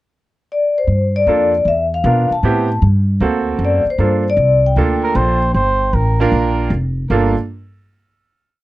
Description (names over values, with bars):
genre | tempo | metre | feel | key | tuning
jazz | 154 BPM | 4/4 | swing 66% on 8ths | G minor | A4 = 441 Hz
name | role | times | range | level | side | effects
vibraphone with medium hard mallets | melody | 0.5-6.7 s | C5 to A5 | -17 LUFS | left 3 dB | none
upright bass | bass | 0.9-7.3 s | F1 to B2 | -16 LUFS | equal | none
bright grand piano | accompaniment | 1.3-7.3 s | Bb3 to Bb4 | -18 LUFS | right 4 dB | none
dark trumpet | second line | 5.0-7.3 s | Bb4 to C5 | -19 LUFS | right 2 dB | none
room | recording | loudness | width
light reverb | dry, close 1970s-style studio recording | -13 LUFS | side -16 dB against mid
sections
0.0-0.9 pickup bar; 0.9-7.1 A section; 7.1-8.6 final chord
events
none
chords
0.0 N.C.; 0.9 Gm7; 1.7 E5; 2.4 Am7; 3.2 D7b13; 4.0 Gm7